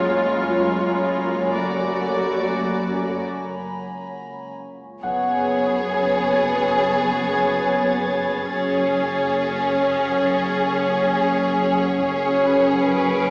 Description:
cinematic, suspense film score; 69 BPM; 4/4; straight; A4 = 440 Hz
warm studio violin section; melody; 0.0-13.3 s; B4 to D5; -23 LUFS; equal
rich studio viola section; accompaniment; 0.0-13.3 s; G#3 to F#4; -24 LUFS; equal
warm studio cello section; bass; 0.0-13.3 s; F#2; -29 LUFS; equal
organ-like drone; drone; 0.0-13.3 s; F#1 to C#2; -30 LUFS; equal; ensemble chorus, built-in reverb, phaser
Celtic harp; texture; 0.0-13.3 s; B4 to F#5; -27 LUFS; equal
dark studio violin section; texture; 0.0-13.3 s; G#5 to D7; -31 LUFS; equal
rich studio violin section; second line; 5.0-13.3 s; G#4; -23 LUFS; equal
warm studio double bass section; bass; 5.0-13.3 s; F#1; -30 LUFS; equal
solo taiko drums; drums; 5.0-6.7, 12.0-13.3 s; -41 LUFS; equal
wet scoring stage reverb, RT60 1.9 s; heard from further back in the room, small speaker sound; -18 LUFS; side -34 dB against mid
0.0-5.0 A section; 5.0-13.3 B section
break 3.3-5.0
0.0 C#/F#; 1.6 D/F#; 3.3 C#5; 5.0 C#7sus4/F#; 8.5 F#sus2

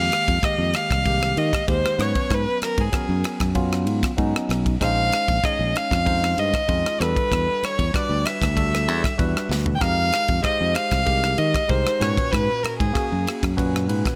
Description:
electric jazz fusion; 96 BPM; 4/4; straight; A4 = 440 Hz
rich violin; melody; 0.0-13.4 s; Ab4 to G5; -26 LUFS; equal; analog delay
barky tine electric piano; accompaniment; 0.0-14.2 s; Bb2 to Db5; -30 LUFS; equal; phaser
modern bright fingered electric bass; bass; 0.0-14.0 s; Bb1 to Eb3; -26 LUFS; equal
tight funk drum kit; drums; 0.1-14.2 s; kick drum, ride cymbal, rim click, snare drum, toms; -28 LUFS; equal
light reverb, small room ambience; -22 LUFS; mono
0.0-14.2 A section
drum fill 9.5-9.8; tine electric piano fill 13.6-14.2
0.0 Fm11; 2.0 Abm11; 4.8 Bbm11; 7.0 Em11; 9.8 Fm11; 12.0 Abm11

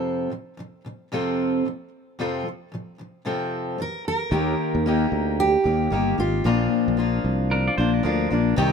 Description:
acoustic pop; 112 BPM; 4/4; swing 60% on 16ths; Bb major; A4 = 440 Hz
fingerpicked steel-string acoustic guitar; accompaniment; 0.0-8.7 s; F2 to A4; -24 LUFS; left 2 dB
fingerpicked steel-string acoustic guitar; melody; 3.8-6.7 s; F4 to Bb4; -24 LUFS; right 4 dB
sustaining fretless electric bass; bass; 4.3-8.7 s; G1 to Eb2; -23 LUFS; equal
pedal steel guitar; second line; 7.5-8.5 s; D4 to D5; -27 LUFS; right 1 dB
little or no reverb; -21 LUFS; side -6 dB against mid
0.0-4.3 A section; 4.3-8.7 B section
0.0 F; 4.3 Eb; 6.5 Bb

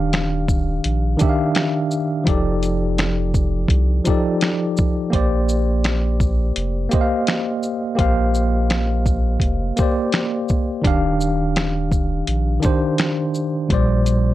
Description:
lo-fi hip hop; 84 BPM; 4/4; swing 56% on 16ths; Bb major; A4 = 440 Hz
tine electric piano; accompaniment; 0.0-14.3 s; Bb2 to F5; -20 LUFS; equal; medium stereo tremolo, cassette tape, low-pass filter
warm sub bass; bass; 0.0-14.3 s; Eb1 to C2; -21 LUFS; equal
lo-fi sampler-style drum kit; drums; 0.1-14.2 s; finger snaps, hi-hat, kick drum, shaker, snare drum; -20 LUFS; equal
little or no reverb; dry, gritty hardware recording; -17 LUFS; side -14 dB against mid
0.0-14.3 A section
0.0 Ebmaj9; 2.3 F13; 5.1 Bb69; 10.8 Ebmaj9; 13.7 Bb69

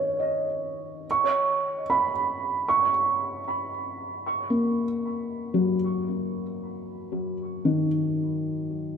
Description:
ambient; 57 BPM; 4/4; straight; A4 = 440 Hz
felt-muted upright piano; solo; 0.0-9.0 s; D#3 to C#6; -24 LUFS; right 1 dB; analog delay
wet spring reverb, RT60 2.5 s; echo-heavy mix; -24 LUFS; side -7 dB against mid
0.0-1.0 A section; 1.0-9.0 B section
0.0 D#m7

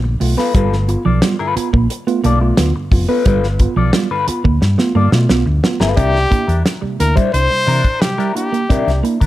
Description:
funk; 88 BPM; 4/4; straight; G mixolydian; A4 = 440 Hz
electric guitar at the edge of break-up; accompaniment; 0.0-9.3 s; D4 to D5; -21 LUFS; left 6 dB; wah, spring reverb, plate reverb
tine electric piano; stabs; 0.0-9.2 s; G2 to F4; -23 LUFS; right 3 dB; wide subtle chorus, tape echo
hollow-body short-scale fingered electric bass; bass; 0.0-9.3 s; F1 to C3; -16 LUFS; equal
mellow electric guitar; riff; 0.2-9.2 s; E3 to C4; -20 LUFS; right 6 dB
damped 70s drum kit; drums; 0.2-9.3 s; hi-hat, kick drum, snare drum; -17 LUFS; equal
clear trumpet; melody; 6.0-9.0 s; G4 to C5; -18 LUFS; left 1 dB
light reverb; -12 LUFS; side -15 dB against mid
0.0-6.0 A section; 6.0-9.3 B section
drum fill 4.6-6.0
0.0 G9; 6.0 C9

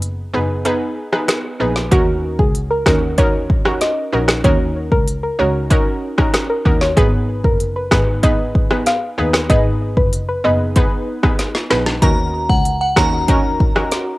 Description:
dancehall; 95 BPM; 4/4; straight; Eb minor; A4 = 441 Hz
analog pluck; accompaniment; 0.0-14.2 s; Cb4 to Cb5; -20 LUFS; equal; chorus, cassette tape
dark double bass; bass; 0.0-13.9 s; Gb1 to Eb2; -22 LUFS; equal
afro-pop drum kit; drums; 0.0-14.1 s; hi-hat, kick drum, rim click, snare drum; -16 LUFS; equal; cassette tape
soft round pluck; melody; 1.9-11.8 s; Gb4 to F5; -20 LUFS; equal; chorus, cassette tape
glassy synth bell; second line; 12.0-14.2 s; Gb5 to Bb5; -19 LUFS; equal; chorus, phaser, cassette tape, tape echo
light reverb; home recording on cassette; -14 LUFS; side -19 dB against mid
0.0-1.9 A section; 1.9-14.2 B section
break 0.0-1.9; drum fill 11.4-12.0
0.0 Abm; 1.9 Ebm7; 7.0 Abm; 12.0 Ebm7

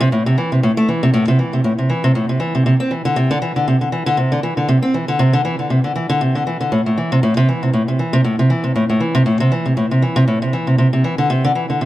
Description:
folktronica; 118 BPM; 4/4; swing 56% on 16ths; A4 = 440 Hz
fingerpicked steel-string acoustic guitar; solo; 0.0-11.9 s; A2 to C4; -14 LUFS; equal
light reverb; dark, warm production; -14 LUFS; side -15 dB against mid
0.0-11.9 A section

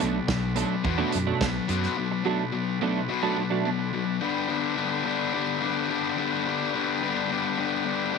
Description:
indie rock; 107 BPM; 4/4; straight; A4 = 440 Hz
overdriven combo organ; sustained chords; 0.0-8.2 s; D4 to G5; -33 LUFS; right 14 dB
clean electric guitar; riff; 0.0-3.8 s; B2 to D4; -29 LUFS; right 12 dB; analog chorus
thick fuzz guitar; riff; 0.0-8.2 s; G2 to D4; -26 LUFS; left 10 dB; distortion
fingered electric bass; bass; 0.0-1.9 s; B1 to F#2; -29 LUFS; right 2 dB
loose indie drum kit; drums; 0.0-1.9 s; hi-hat, kick drum, snare drum; -30 LUFS; right 3 dB
light reverb, studio reverb; 1960s-style stereo with parts hard left and right; -24 LUFS; side -5 dB against mid
0.0-4.2 A section; 4.2-8.2 B section
0.0 Bm7; 4.2 G

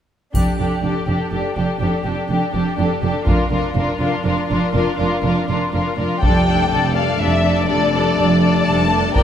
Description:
cinematic, epic orchestral film score; 123 BPM; 3/4; straight; A4 = 440 Hz
warm symphonic violin section; melody; 0.3-9.2 s; A4 to A5; -24 LUFS; left 4 dB
dark symphonic viola section; accompaniment; 0.3-9.2 s; F3 to D4; -24 LUFS; right 1 dB
warm symphonic cello section; bass; 0.3-9.2 s; F2; -22 LUFS; right 2 dB
solo taiko drums; drums; 0.3-9.2 s; -20 LUFS; equal
triangle; percussion; 0.3-1.3 s; -39 LUFS; left 5 dB
rich symphonic violin section; second line; 0.4-9.2 s; F4 to D5; -22 LUFS; left 3 dB
rich symphonic double bass section; bass; 0.4-9.2 s; F1; -22 LUFS; right 3 dB
warm French horn section; sustained chords; 6.2-9.2 s; A3 to D4; -23 LUFS; left 6 dB
moderate concert hall reverb, RT60 1.8 s; -16 LUFS; side -9 dB against mid
0.3-6.2 A section; 6.2-9.2 B section
0.3 Gsus2/F

